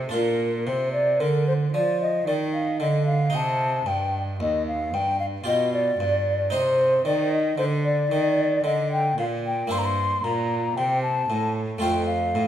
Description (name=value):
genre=classical, baroque-style sonata movement with continuo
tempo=56 BPM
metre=3/4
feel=straight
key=unclear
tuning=A4 = 440 Hz
part: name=harpsichord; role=accompaniment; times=0.0-12.5 s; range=Eb2 to C5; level=-28 LUFS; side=right 2 dB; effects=none
part: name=rich cello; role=bass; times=0.0-12.5 s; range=Eb2 to F3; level=-27 LUFS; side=right 1 dB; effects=none
part: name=mellow hollow silver concert flute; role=melody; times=0.1-12.5 s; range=Bb4 to C6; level=-23 LUFS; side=left 1 dB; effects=none
room=moderate recital hall reverb, RT60 1.3 s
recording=minimal, uncompressed stereo recording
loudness=-21 LUFS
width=side -10 dB against mid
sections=0.0-12.5 A section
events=none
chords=0.1 Bb; 3.3 Cm; 5.5 G7/B; 6.5 Cm; 9.7 C7/G; 11.8 F